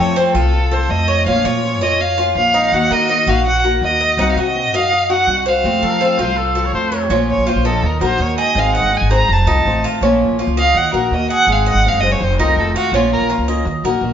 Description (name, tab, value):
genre	latin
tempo	164 BPM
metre	4/4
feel	straight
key	Bb minor from 7.1 s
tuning	A4 = 442 Hz
part	warm violin	melody	0.0-13.2 s	F4 to Bb5	-17 LUFS	right 1 dB	none
part	picked old ladder-braced acoustic guitar	accompaniment	0.0-14.1 s	C3 to Ab4	-20 LUFS	left 2 dB	none
part	Cuban tres	arpeggios	0.0-14.1 s	C4 to Eb5	-20 LUFS	right 1 dB	none
part	upright bass	bass	0.0-14.1 s	F1 to F3	-19 LUFS	equal	none
part	bright trumpet	second line	5.8-7.1 s	A4 to Db5	-22 LUFS	left 2 dB	none
room	wet large studio reverb, RT60 1.2 s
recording	band playing live in one room, nothing above 7.5 kHz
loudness	-13 LUFS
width	side -9 dB against mid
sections	0.0-7.1 A section; 7.1-14.1 B section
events	violin solo 7.1-14.1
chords	0.0 F; 1.3 Bbm; 2.7 Ebm; 4.2 Cdim; 5.6 F; 7.1 Bbm; 7.8 Ebm; 8.6 Ab; 9.3 F7; 10.0 Bbm; 10.8 Ebm; 11.5 Ab; 12.2 F7; 12.9 Bbm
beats	0.16 0.53 0.90 | 1.26 1.63 1.99 2.36 | 2.72 3.09 3.45 3.82 | 4.18 4.55 4.92 5.28 | 5.64 6.01 6.38 6.74 | 7.11 7.47 7.83 8.20 | 8.56 8.93 9.29 9.66 | 10.02 10.39 10.75 11.11 | 11.48 11.84 12.21 12.57 | 12.93 13.30 13.66 14.02